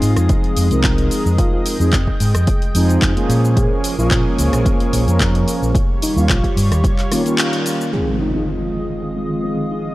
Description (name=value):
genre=nu-disco, nu disco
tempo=110 BPM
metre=4/4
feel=swing 53% on 16ths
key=F minor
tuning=A4 = 441 Hz
part: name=mellow synth brass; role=accompaniment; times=0.0-9.9 s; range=Eb3 to Bb4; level=-20 LUFS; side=equal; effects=chorus, analog delay
part: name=lush unison pad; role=sustained chords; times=0.0-9.9 s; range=G3 to G5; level=-25 LUFS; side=equal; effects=chorus, vintage 12-bit sampler grit, sidechain pumping
part: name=overdriven fingered electric bass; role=bass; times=0.0-6.8 s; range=F1 to Bb2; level=-16 LUFS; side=equal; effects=sidechain pumping
part: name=house drum kit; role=drums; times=0.0-8.0 s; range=crash cymbal, handclaps, hi-hat, rim click, shaker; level=-23 LUFS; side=equal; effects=low-pass filter on hats, low-pass filter on perc, low-pass filter on snare, low-pass filter on cymbals
part: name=electronic kick drum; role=drums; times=0.3-7.0 s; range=none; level=-18 LUFS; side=equal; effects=none
part: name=soft octave-layered synth lead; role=melody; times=1.4-8.4 s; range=Eb4 to Ab4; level=-27 LUFS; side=equal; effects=chorus, tape echo
part: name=wide unison pluck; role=arpeggios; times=7.9-9.9 s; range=Eb3 to Eb4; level=-30 LUFS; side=equal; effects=sidechain pumping, tape echo
part: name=impact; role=sound effects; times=7.9-9.9 s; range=none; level=-26 LUFS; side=equal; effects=none
room=light reverb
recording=dry, gritty hardware recording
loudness=-14 LUFS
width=side -17 dB against mid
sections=0.0-7.9 A section; 7.9-9.9 B section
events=band accent 7.4; impact 7.9-9.9; filter sweep on drum 7.9-9.9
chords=0.0 Fm7; 3.3 Bbm7; 5.8 Eb9; 7.9 Fm7